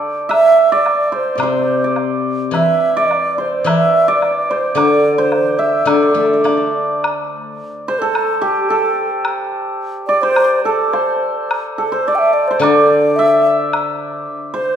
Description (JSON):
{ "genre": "chinese traditional, Chinese chamber ensemble", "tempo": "108 BPM", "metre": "2/4", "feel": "rubato", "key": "D shang mode", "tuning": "A4 = 440 Hz", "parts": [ { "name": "hammered dulcimer", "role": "second line", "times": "0.0-14.8 s", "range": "G4 to E5", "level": "-18 LUFS", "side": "right 1 dB", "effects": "none" }, { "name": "xiao", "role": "melody", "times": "0.3-14.8 s", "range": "G4 to G5", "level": "-15 LUFS", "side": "right 1 dB", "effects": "none" }, { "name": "woodblock", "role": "percussion", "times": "0.3-13.9 s", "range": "none", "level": "-24 LUFS", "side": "left 2 dB", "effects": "none" }, { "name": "steel-string zither", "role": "accompaniment", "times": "1.4-7.6, 12.6-14.2 s", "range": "C3 to D4", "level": "-18 LUFS", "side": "left 2 dB", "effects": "none" } ], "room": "moderate recital hall reverb, RT60 1.5 s", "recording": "minimal, uncompressed stereo recording", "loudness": "-13 LUFS", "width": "side -8 dB against mid", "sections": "0.0-7.0 A section; 7.0-14.8 B section", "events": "none", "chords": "none" }